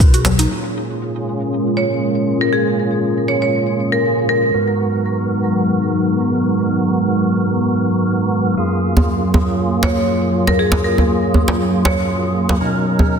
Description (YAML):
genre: afro house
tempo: 119 BPM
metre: 4/4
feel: swing 55% on 16ths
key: Bb phrygian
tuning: A4 = 439 Hz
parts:
  - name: dark analog pad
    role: sustained chords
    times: 0.0-13.2 s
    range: Gb3 to D#5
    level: -19 LUFS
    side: left 1 dB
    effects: chorus, sidechain pumping
  - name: smooth synth bass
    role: bass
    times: 0.0-0.5 s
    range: B1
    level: -17 LUFS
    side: equal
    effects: sidechain pumping
  - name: electronic shaker and hi-hat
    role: drums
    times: 0.0-0.5 s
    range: none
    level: -23 LUFS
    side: equal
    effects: soft clipping on snare
  - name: mallet-like synth pluck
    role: arpeggios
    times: 0.1-0.5 s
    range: F#3 to F#4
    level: -23 LUFS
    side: left 2 dB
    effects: chorus, sidechain pumping, ping-pong delay
  - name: djembe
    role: percussion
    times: 0.2-0.4, 9.0-13.1 s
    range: none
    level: -18 LUFS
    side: equal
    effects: none
  - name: percussive tonewheel organ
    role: stabs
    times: 0.5-13.2 s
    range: Gb2 to Bb4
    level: -20 LUFS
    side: right 2 dB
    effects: overdrive, chorus vibrato, slow rotary speaker, sidechain pumping, low-pass filter
  - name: marimba with hard mallets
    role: melody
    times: 1.8-4.6, 9.8-12.6 s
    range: Ab4 to Db5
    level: -20 LUFS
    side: equal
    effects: ping-pong delay
room: moderate lush hall reverb, RT60 2.0 s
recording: dense, heavily limited modern master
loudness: -14 LUFS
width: side -7 dB against mid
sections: 0.5-13.2 A section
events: none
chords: 0.0 Bmaj7; 0.5 Bbm7; 4.5 Abm7; 8.6 Gbmaj7; 12.6 Bmaj7